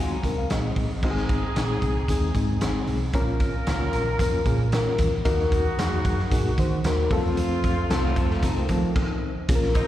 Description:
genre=uptempo 1960s-style soul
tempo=113 BPM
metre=4/4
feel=straight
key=unclear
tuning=A4 = 439 Hz
part: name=reed electric piano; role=accompaniment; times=0.0-9.9 s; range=Ab3 to Ab5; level=-27 LUFS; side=left 3 dB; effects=overdrive, harmonic tremolo, plate reverb, slapback echo
part: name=electric guitar through a small old amp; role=riff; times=0.0-0.9, 7.9-9.3 s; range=Eb3 to A4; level=-32 LUFS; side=left 6 dB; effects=slapback echo
part: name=hollow-body short-scale fingered electric bass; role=bass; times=0.0-9.8 s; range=Ab1 to F3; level=-26 LUFS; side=right 1 dB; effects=none
part: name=raw garage drum kit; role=drums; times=0.2-9.9 s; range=crash cymbal, hi-hat, kick drum, snare drum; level=-26 LUFS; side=right 1 dB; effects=none
part: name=mellow horn section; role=second line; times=1.0-9.9 s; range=Ab3 to Bb4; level=-31 LUFS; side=right 1 dB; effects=plate reverb, slapback echo
room=light reverb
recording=live gig heard through the venue's PA, recital hall reverb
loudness=-21 LUFS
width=side -13 dB against mid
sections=0.0-1.0 A section; 1.0-9.5 B section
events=reed electric piano fill 0.0-1.0; stop 9.0-9.5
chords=0.0 Ab; 3.1 Bbm; 5.3 Ebm; 7.1 F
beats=0.49 | 1.02 1.55 2.08 2.61 | 3.14 3.67 4.20 4.72 | 5.25 5.78 6.31 6.84 | 7.37 7.90 8.43 8.96 | 9.49

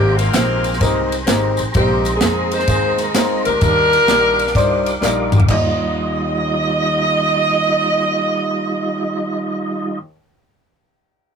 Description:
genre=uptempo gospel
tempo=128 BPM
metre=4/4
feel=swing 66% on 8ths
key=Eb major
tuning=A4 = 442 Hz
part: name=bright saxophone section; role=melody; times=0.0-10.0 s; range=Bb3 to Eb5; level=-17 LUFS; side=equal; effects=none
part: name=warm grand piano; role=accompaniment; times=0.0-10.0 s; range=Eb2 to Eb5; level=-22 LUFS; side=left 2 dB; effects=none
part: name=tonewheel organ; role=sustained chords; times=0.0-10.0 s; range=G3 to D6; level=-23 LUFS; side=right 2 dB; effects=slow rotary speaker, chorus vibrato
part: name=upright bass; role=bass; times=0.0-10.0 s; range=Ab1 to F2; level=-24 LUFS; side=equal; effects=none
part: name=tight funk drum kit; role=drums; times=0.2-5.6 s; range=crash cymbal, kick drum, ride cymbal, snare drum, toms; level=-20 LUFS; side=equal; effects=none
part: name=tambourine and handclaps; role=percussion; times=0.2-5.8 s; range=none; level=-27 LUFS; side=left 2 dB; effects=none
room=wet booth ambience, RT60 0.2 s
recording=rough rehearsal-room recording, warm saturation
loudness=-14 LUFS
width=side -6 dB against mid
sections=0.0-5.5 A section; 5.5-9.2 B section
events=drum fill 5.0-5.5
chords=0.0 Abmaj9; 1.7 Bb9sus4; 3.6 Ebmaj9; 5.5 Ebadd9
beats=0.34 0.81 1.28 | 1.75 2.22 2.68 3.15 | 3.62 4.09 4.55 5.02 | 5.49 5.96 6.42 6.89 | 7.36 7.83 8.29 8.76

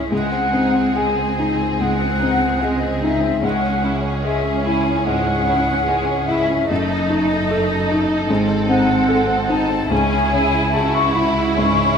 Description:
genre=classical, romantic movement for piano and orchestra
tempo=73 BPM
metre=4/4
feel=rubato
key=C# minor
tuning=A4 = 440 Hz
part: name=rich studio violin section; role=melody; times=0.0-12.0 s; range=F#4 to A4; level=-29 LUFS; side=equal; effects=none
part: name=warm baby grand piano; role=melody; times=0.0-12.0 s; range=C#2 to A4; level=-20 LUFS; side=left 2 dB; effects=none
part: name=rich studio violin section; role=second line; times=0.0-12.0 s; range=G#3 to E4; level=-28 LUFS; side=right 1 dB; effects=none
part: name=small flute group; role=second line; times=0.0-12.0 s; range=D#5 to C#6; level=-21 LUFS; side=left 2 dB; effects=none
part: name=rich symphonic viola section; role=accompaniment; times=0.0-12.0 s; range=B#3 to E4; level=-26 LUFS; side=right 2 dB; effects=none
part: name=rich studio cello section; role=bass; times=0.0-12.0 s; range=C#2 to C#3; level=-28 LUFS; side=right 3 dB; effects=none
part: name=rich studio double bass section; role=bass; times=0.0-12.0 s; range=F#1 to C#2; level=-26 LUFS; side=right 3 dB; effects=none
room=wet scoring stage reverb, RT60 1.6 s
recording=none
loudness=-16 LUFS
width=side -7 dB against mid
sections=0.0-12.0 A section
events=none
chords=0.1 G#7/C#; 3.4 C#m; 6.7 D#dim/F#; 8.3 G#7b9; 9.9 C#m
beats=| 0.12 0.96 1.79 2.62 | 3.44 4.24 5.07 5.88 | 6.70 7.51 8.29 9.09 | 9.91 10.75 11.59

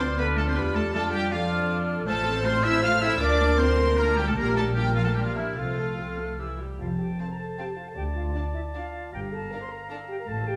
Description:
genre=quick classical-period movement for symphony orchestra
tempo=156 BPM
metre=3/4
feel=rubato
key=F major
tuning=A4 = 440 Hz
part: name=warm studio violin section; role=melody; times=0.0-10.0 s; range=E5 to F6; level=-36 LUFS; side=equal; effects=none
part: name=clear oboe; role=second line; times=0.0-10.6 s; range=E4 to Bb5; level=-35 LUFS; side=equal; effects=none
part: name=silver concert flute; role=second line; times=0.0-10.6 s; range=D5 to F6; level=-37 LUFS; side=equal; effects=none
part: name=warm clarinet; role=second line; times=0.0-10.6 s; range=G4 to F5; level=-40 LUFS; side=equal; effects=none
part: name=warm studio violin section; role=second line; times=0.0-10.0 s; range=E4 to F5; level=-38 LUFS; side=equal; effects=none
part: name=warm studio viola section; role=accompaniment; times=0.0-10.0 s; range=E3 to A4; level=-37 LUFS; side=equal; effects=none
part: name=mellow French horn section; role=sustained chords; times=0.0-10.6 s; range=D4 to C5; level=-34 LUFS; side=equal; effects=none
part: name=warm studio cello section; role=bass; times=0.0-10.6 s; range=D2 to F4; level=-33 LUFS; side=equal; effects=none
part: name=warm studio double bass section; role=bass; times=0.0-10.6 s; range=F1 to F2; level=-32 LUFS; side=equal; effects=none
room=wet recital hall reverb, RT60 1.4 s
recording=none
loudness=-26 LUFS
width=mono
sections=0.0-6.8 A section; 6.8-10.6 B section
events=none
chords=0.0 Dm; 0.9 Dm/F; 2.1 F/A; 3.2 Bb/D; 4.4 Bb; 5.6 F/C; 6.4 C; 6.8 F; 8.0 Dm; 9.1 Gm7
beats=0.18 0.56 | 0.94 1.32 1.70 | 2.08 2.46 2.84 | 3.22 3.60 3.99 | 4.37 4.76 5.16 | 5.57 5.99 6.39 | 6.80 7.19 7.58 | 7.97 8.35 8.74 | 9.13 9.52 9.90 | 10.28

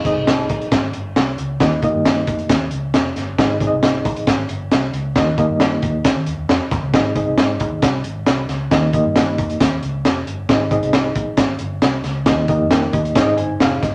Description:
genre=uptempo 1960s-style soul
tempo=135 BPM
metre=4/4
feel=straight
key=Ab major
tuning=A4 = 439 Hz
part: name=reed electric piano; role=accompaniment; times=0.0-13.9 s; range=Ab2 to Ab5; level=-22 LUFS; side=equal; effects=fast tremolo
part: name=vintage muted fingered electric bass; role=bass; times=0.0-13.9 s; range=F1 to Eb3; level=-28 LUFS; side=equal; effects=none
part: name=crunchy breakbeat drum kit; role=drums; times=0.1-13.9 s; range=hi-hat, kick drum, snare drum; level=-20 LUFS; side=equal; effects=none
room=wet club reverb, RT60 0.7 s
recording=none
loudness=-18 LUFS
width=mono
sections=0.0-13.9 A section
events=none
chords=0.0 Ab; 1.6 Eb; 3.4 Ab; 5.2 Eb; 6.9 Ab; 8.7 Eb; 10.5 Ab; 12.3 Eb; 13.2 Ab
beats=0.27 0.72 1.16 | 1.61 2.05 2.50 2.94 | 3.38 3.83 4.27 4.72 | 5.16 5.61 6.05 6.49 | 6.94 7.38 7.83 8.27 | 8.71 9.16 9.60 10.05 | 10.49 10.93 11.38 11.82 | 12.27 12.71 13.16 13.60

